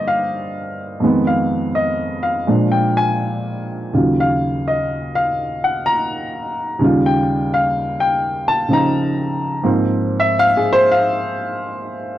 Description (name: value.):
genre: solo jazz.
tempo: 84 BPM.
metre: 4/4.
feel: swing 67% on 8ths, rubato.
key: unclear.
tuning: A4 = 443 Hz.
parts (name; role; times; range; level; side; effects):
warm baby grand piano; solo; 0.0-12.2 s; Eb2 to Bb5; -16 LUFS; equal; none.
room: light reverb.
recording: dry, close 1970s-style studio recording.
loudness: -15 LUFS.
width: side -13 dB against mid.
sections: 0.0-12.2 A section.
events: grand piano solo 0.0-12.2.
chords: 0.0 Gm7; 1.0 Fm7b5; 2.5 Bb7; 3.9 Ebm9; 6.8 Eb9; 9.6 Ab69.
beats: 0.31 | 1.02 1.75 2.47 3.20 | 3.94 4.67 5.38 6.10 | 6.81 7.52 8.23 8.94 | 9.64 10.35 11.05 11.77.